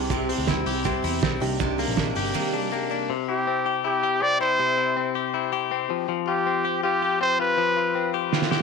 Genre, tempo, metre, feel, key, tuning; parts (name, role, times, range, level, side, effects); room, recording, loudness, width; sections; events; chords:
jangly indie pop; 161 BPM; 4/4; straight; C major; A4 = 436 Hz
picked steel-string acoustic guitar; accompaniment; 0.0-3.1 s; C3 to G4; -30 LUFS; right 13 dB; tube saturation
soft electric-piano-like synth keys; accompaniment; 0.0-3.1 s; C4 to G4; -33 LUFS; right 13 dB; chorus
direct-recorded clean electric guitar; arpeggios; 0.0-8.6 s; C3 to G4; -26 LUFS; left 14 dB
vintage muted picked electric bass; bass; 0.0-2.3 s; G1 to E2; -31 LUFS; equal
cloth-damped thuddy drum kit; drums; 0.1-2.2, 8.3-8.6 s; hi-hat, kick drum, snare drum; -27 LUFS; right 8 dB
clear trumpet; melody; 3.3-8.1 s; G4 to D5; -24 LUFS; right 1 dB; tape echo
moderate spring reverb, RT60 1.4 s, small room ambience; 1960s-style stereo with parts hard left and right; -22 LUFS; side -5 dB against mid
0.0-3.1 A section; 3.1-8.6 B section
drum fill 8.3
0.0 C; 1.4 Ebmaj7; 3.1 C; 5.9 Fsus2